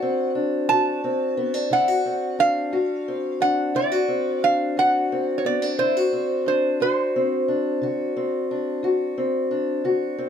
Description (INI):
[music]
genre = acoustic country blues, solo or duo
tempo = 59 BPM (dotted quarters)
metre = 12/8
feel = straight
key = D mixolydian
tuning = A4 = 440 Hz
[part]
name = metal-body resonator slide guitar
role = melody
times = 0.0-8.8 s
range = C5 to A5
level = -22 LUFS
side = right 2 dB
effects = none
[part]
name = fingerpicked steel-string acoustic guitar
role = accompaniment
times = 0.0-10.3 s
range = D2 to F#4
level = -22 LUFS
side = left 2 dB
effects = none
[sound]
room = light reverb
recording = none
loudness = -20 LUFS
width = side -8 dB against mid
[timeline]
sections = 0.0-10.3 A section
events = none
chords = 0.0 D7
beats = 0.69 1.71 | 2.73 3.75 4.77 5.79 | 6.80 7.82 8.83 9.84